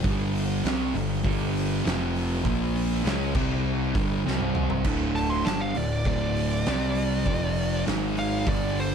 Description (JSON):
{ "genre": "stoner and doom metal", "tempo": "100 BPM", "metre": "4/4", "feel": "straight", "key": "D phrygian", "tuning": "A4 = 440 Hz", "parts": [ { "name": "thick fuzz guitar", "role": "riff", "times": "0.0-8.9 s", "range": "D2 to C#4", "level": "-29 LUFS", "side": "left 10 dB", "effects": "distortion" }, { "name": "thick fuzz guitar", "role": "riff", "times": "0.0-8.9 s", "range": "D2 to C#4", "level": "-29 LUFS", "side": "right 15 dB", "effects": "distortion" }, { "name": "fuzz picked electric bass", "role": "bass", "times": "0.0-8.9 s", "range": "D1 to C#2", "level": "-30 LUFS", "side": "right 1 dB", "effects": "overdrive" }, { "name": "oversized low-tuned drum kit", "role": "drums", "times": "0.0-8.9 s", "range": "crash cymbal, hi-hat, kick drum, snare drum, toms", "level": "-30 LUFS", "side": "right 1 dB", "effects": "none" }, { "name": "fuzz lead guitar", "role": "melody", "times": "5.2-8.9 s", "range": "C5 to C6", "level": "-30 LUFS", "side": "right 1 dB", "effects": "distortion, slapback echo" } ], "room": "little or no reverb", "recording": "none", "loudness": "-23 LUFS", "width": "side -7 dB against mid", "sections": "0.0-4.9 A section; 4.9-8.9 B section", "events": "drum fill 4.2-4.9; lead electric guitar solo 4.9-8.9", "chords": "0.0 G5; 1.8 F5; 2.4 Bb5; 3.0 C#5; 3.3 C5; 3.9 G5; 4.2 C5; 4.9 D5; 6.7 C5; 7.3 F5; 7.9 G#5", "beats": "| 0.04 0.65 1.25 1.85 | 2.45 3.05 3.65 4.25 | 4.85 5.45 6.06 6.66 | 7.26 7.87 8.47" }